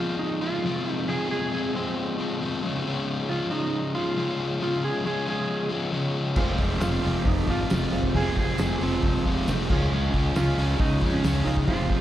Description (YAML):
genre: classic rock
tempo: 136 BPM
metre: 4/4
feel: straight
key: unclear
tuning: A4 = 439 Hz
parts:
  - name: clean lap steel guitar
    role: melody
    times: 0.0-12.0 s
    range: C4 to Ab4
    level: -30 LUFS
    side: right 2 dB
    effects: slapback echo
  - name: overdriven semi-hollow guitar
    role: riff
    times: 0.0-12.0 s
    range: F2 to F4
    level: -27 LUFS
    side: left 3 dB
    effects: slapback echo
  - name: clear upright piano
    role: accompaniment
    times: 6.4-12.0 s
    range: F4 to Ab5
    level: -36 LUFS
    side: right 4 dB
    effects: slapback echo
  - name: cranked stack guitar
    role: riff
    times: 6.4-12.0 s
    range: F2 to Db4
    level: -32 LUFS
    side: right 10 dB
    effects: overdrive, slapback echo
  - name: fuzz fingered electric bass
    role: bass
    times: 6.4-12.0 s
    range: F1 to F2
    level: -26 LUFS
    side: equal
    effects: overdrive
  - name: cloth-damped thuddy drum kit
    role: drums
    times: 6.4-12.0 s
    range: crash cymbal, hi-hat, kick drum, snare drum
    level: -28 LUFS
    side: equal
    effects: none
  - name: tambourine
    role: percussion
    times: 6.8-11.3 s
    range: none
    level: -45 LUFS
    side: right 5 dB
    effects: none
room: little or no reverb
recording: live gig heard through the venue's PA, recital hall reverb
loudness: -23 LUFS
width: side -12 dB against mid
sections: 0.0-12.0 A section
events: none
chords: 0.0 Fm; 2.6 Db; 6.4 Fm; 9.7 Db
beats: 0.19 0.63 | 1.07 1.52 1.96 2.40 | 2.84 3.29 3.73 4.17 | 4.61 5.05 5.50 5.94 | 6.38 6.83 7.27 7.71 | 8.15 8.59 9.04 9.48 | 9.92 10.36 10.80 11.24 | 11.68